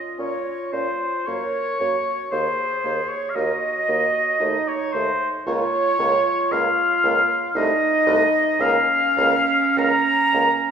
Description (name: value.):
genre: classical, slow romantic movement for wind quintet.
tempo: 57 BPM.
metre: 3/4.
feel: rubato.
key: Bb minor.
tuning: A4 = 439 Hz.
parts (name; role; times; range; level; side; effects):
warm oboe; second line; 0.0-10.7 s; C5 to Bb5; -21 LUFS; equal; none.
mellow clarinet; accompaniment; 0.0-10.7 s; Db4 to Bb4; -27 LUFS; right 7 dB; none.
concert flute; melody; 0.2-10.7 s; C5 to Bb5; -26 LUFS; left 2 dB; none.
clear French horn; accompaniment; 0.2-10.5 s; A3 to Db4; -30 LUFS; right 1 dB; none.
warm bassoon; bass; 0.2-10.5 s; C2 to Bb2; -28 LUFS; right 2 dB; none.
room: moderate concert hall reverb, RT60 2.1 s.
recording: recorded in a church or concert hall, studio reverb.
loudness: -18 LUFS.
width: side -7 dB against mid.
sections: 0.0-10.7 A section.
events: none.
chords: 0.0 Bbm; 1.3 Gb; 2.3 Ebm13; 4.4 Adim/Eb; 5.5 Bbm/Db; 7.6 Cm6; 8.6 Bbm/Db.